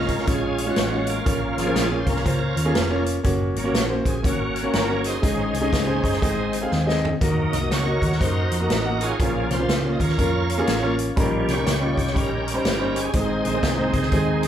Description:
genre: uptempo gospel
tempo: 121 BPM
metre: 4/4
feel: swing 63% on 8ths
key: unclear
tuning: A4 = 440 Hz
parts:
  - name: clear grand piano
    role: accompaniment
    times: 0.0-14.4 s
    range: Ab2 to Gb5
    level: -25 LUFS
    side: equal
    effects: none
  - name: bright tonewheel organ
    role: sustained chords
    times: 0.0-14.5 s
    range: Eb3 to Eb5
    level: -26 LUFS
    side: right 2 dB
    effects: slow rotary speaker, chorus vibrato
  - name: hollow-body short-scale picked electric bass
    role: bass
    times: 0.0-14.5 s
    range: F1 to Gb2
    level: -26 LUFS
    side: equal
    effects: none
  - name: swinging big-band drum kit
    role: drums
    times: 0.1-14.5 s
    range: hi-hat, kick drum, snare drum, toms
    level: -25 LUFS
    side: equal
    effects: none
room: moderate large studio reverb, RT60 1.2 s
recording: band playing live in one room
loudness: -20 LUFS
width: side -10 dB against mid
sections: 0.0-14.5 A section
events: tonewheel organ solo 0.0-14.5; drum fill 6.7-7.2; grand piano fill 10.4-11.2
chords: 0.0 Db; 1.3 Bbm; 3.2 Gb; 5.2 Absus4; 6.2 Ab; 7.2 Ebm; 9.2 Bbm; 11.2 Eb7/Bb; 13.1 Ab

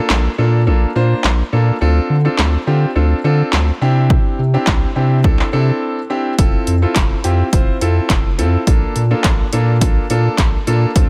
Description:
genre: dance-pop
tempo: 105 BPM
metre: 4/4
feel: straight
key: unclear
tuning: A4 = 441 Hz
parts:
  - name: clear grand piano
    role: accompaniment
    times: 0.0-11.1 s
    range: Bb3 to C5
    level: -22 LUFS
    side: equal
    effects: sidechain pumping
  - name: saturated sub bass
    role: bass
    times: 0.1-11.1 s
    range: F1 to D3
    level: -17 LUFS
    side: equal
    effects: sidechain pumping
  - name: punchy analog drum machine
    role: drums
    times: 0.1-11.1 s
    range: handclaps, hi-hat, kick drum, snare drum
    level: -18 LUFS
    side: equal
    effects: none
room: little or no reverb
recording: none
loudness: -15 LUFS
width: mono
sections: 0.0-11.1 A section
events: break 5.8-6.4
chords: 0.0 Bbmaj7; 1.8 Dm7; 3.8 Cadd9; 6.4 Fmaj7; 8.7 Bbmaj7

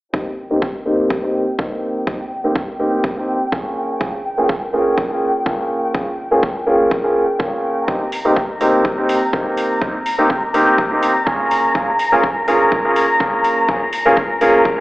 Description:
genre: filtered disco house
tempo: 124 BPM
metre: 4/4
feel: swing 54% on 16ths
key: Ab major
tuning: A4 = 437 Hz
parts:
  - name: bright baby grand piano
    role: accompaniment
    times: 0.1-14.8 s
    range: Bb3 to Ab4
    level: -16 LUFS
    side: equal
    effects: phaser, sidechain pumping, low-pass filter
  - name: dark studio string section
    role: sustained chords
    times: 0.1-14.8 s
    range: G5 to Bb5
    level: -21 LUFS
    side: left 1 dB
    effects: sidechain pumping, low-pass filter
  - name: electronic kick drum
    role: drums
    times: 0.1-14.8 s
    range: none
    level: -22 LUFS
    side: equal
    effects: none
  - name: electronic hi-hat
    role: drums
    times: 8.1-14.5 s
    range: none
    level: -30 LUFS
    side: equal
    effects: sidechain pumping on hats
room: moderate echo chamber reverb, RT60 2.1 s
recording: played on a big sound system in a bare room, large studio reverb, telephone sound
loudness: -15 LUFS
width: side -18 dB against mid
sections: 0.1-14.8 A section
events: filter sweep 0.1-14.8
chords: 0.1 Abmaj9 (rootless); 3.8 Bbm6; 7.9 Abmaj9 (rootless); 11.5 Bbm7

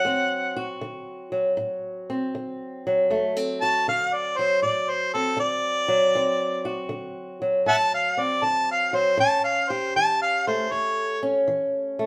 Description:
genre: acoustic country blues, solo or duo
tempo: 79 BPM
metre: 4/4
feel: swing 67% on 8ths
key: D mixolydian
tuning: A4 = 440 Hz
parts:
  - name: warm harmonica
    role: melody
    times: 0.0-11.2 s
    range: A4 to A5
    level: -25 LUFS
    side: equal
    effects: none
  - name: fingerpicked old ladder-braced acoustic guitar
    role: accompaniment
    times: 0.0-12.1 s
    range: D2 to G4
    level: -28 LUFS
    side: equal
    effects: none
room: light reverb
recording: band playing live in one room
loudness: -24 LUFS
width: mono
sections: 0.0-12.1 A section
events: harmonica solo 0.0-12.1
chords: 0.0 D7; 9.2 A7

